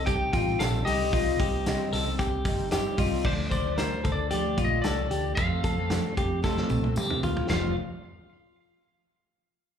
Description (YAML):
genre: jangly indie pop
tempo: 113 BPM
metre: 4/4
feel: straight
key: F mixolydian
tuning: A4 = 441 Hz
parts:
  - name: lightly driven lead guitar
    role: melody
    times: 0.0-7.7 s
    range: C5 to G5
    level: -32 LUFS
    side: left 2 dB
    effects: plate reverb, slapback echo, tape echo
  - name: fingerpicked twelve-string acoustic guitar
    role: accompaniment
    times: 0.0-7.7 s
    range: F2 to Eb4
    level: -32 LUFS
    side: right 3 dB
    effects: plate reverb, slapback echo
  - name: clean electric guitar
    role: arpeggios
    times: 0.0-7.7 s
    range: F4 to D5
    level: -30 LUFS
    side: left 3 dB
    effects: plate reverb, slapback echo
  - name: vintage muted fingered electric bass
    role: bass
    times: 0.0-7.7 s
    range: F1 to C3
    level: -31 LUFS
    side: equal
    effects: none
  - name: loose indie drum kit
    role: drums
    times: 0.1-7.6 s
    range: china cymbal, crash cymbal, hi-hat, kick drum, snare drum, toms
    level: -30 LUFS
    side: equal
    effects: none
  - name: tambourine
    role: percussion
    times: 0.1-7.7 s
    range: none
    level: -47 LUFS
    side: right 1 dB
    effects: none
room: moderate club reverb, RT60 0.8 s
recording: live gig heard through the venue's PA, club reverb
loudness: -24 LUFS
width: side -8 dB against mid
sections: 0.0-3.3 A section; 3.3-7.5 B section; 7.5-9.6 C section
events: drum fill 6.4-7.5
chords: 0.0 Cm; 3.3 Dm; 5.4 F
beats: 0.07 0.60 | 1.13 1.66 2.19 2.72 | 3.25 3.79 4.32 4.85 | 5.38 5.91 6.44 6.97 | 7.50